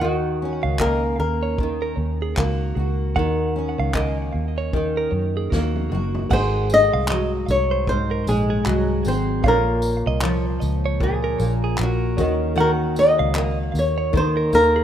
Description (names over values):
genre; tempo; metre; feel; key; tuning
acoustic pop; 76 BPM; 4/4; swing 60% on 16ths; unclear; A4 = 439 Hz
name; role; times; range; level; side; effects
flamenco guitar; melody; 0.0-14.8 s; Gb4 to Eb5; -21 LUFS; left 1 dB; none
fingerpicked steel-string acoustic guitar; accompaniment; 0.0-14.8 s; Ab2 to Ab4; -24 LUFS; equal; double-tracked left and right
direct-recorded clean electric guitar; arpeggios; 0.0-14.8 s; Gb4 to Gb5; -30 LUFS; right 7 dB; warbly pitch drift, digital delay
vintage muted fingered electric bass; bass; 0.0-14.8 s; Gb1 to Gb2; -24 LUFS; equal; none
unplugged drum kit; drums; 0.8-14.7 s; crash cymbal, handclaps, kick drum, snare drum, tambourine, toms; -26 LUFS; equal; none
clear baby grand piano; accompaniment; 6.3-14.8 s; Ab3 to C6; -35 LUFS; left 4 dB; none
room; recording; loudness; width
studio reverb; rough home demo mix; -18 LUFS; side -10 dB against mid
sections
0.0-6.3 A section; 6.3-14.8 B section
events
drum fill 5.5-6.3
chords
0.0 Ebm7; 6.3 Ab7; 9.4 Bbm; 12.2 Ebm7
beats
| 0.01 0.80 1.59 2.38 | 3.16 3.95 4.74 5.52 | 6.30 7.09 7.87 8.66 | 9.44 10.22 11.01 11.79 | 12.57 13.35 14.13